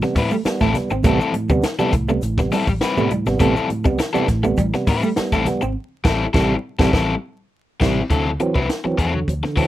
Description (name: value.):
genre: funk.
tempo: 102 BPM.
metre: 4/4.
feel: straight.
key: A dorian.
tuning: A4 = 440 Hz.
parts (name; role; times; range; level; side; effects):
overdriven electric guitar; accompaniment; 0.0-9.7 s; F#3 to B4; -22 LUFS; left 4 dB; none.
tonewheel organ; stabs; 0.0-9.7 s; A2 to C4; -22 LUFS; right 3 dB; overdrive, chorus vibrato, slow rotary speaker.
compact cocktail drum kit; drums; 0.0-9.7 s; crash cymbal, hi-hat, kick drum, snare drum; -21 LUFS; equal; none.
congas; percussion; 0.0-9.7 s; none; -31 LUFS; right 1 dB; none.
egg shaker; percussion; 0.0-5.7 s; none; -46 LUFS; left 5 dB; none.
clean electric guitar; riff; 0.2-5.7 s; G3 to C4; -24 LUFS; right 4 dB; none.
vintage muted fingered electric bass; bass; 0.2-9.7 s; G#1 to D3; -24 LUFS; equal; none.
room: light reverb.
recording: rough home demo mix, vinyl crackle.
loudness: -17 LUFS.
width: side -14 dB against mid.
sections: 0.0-8.1 A section; 8.1-9.7 B section.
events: band accent 5.8-8.1.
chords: 0.0 Am7; 8.1 D9.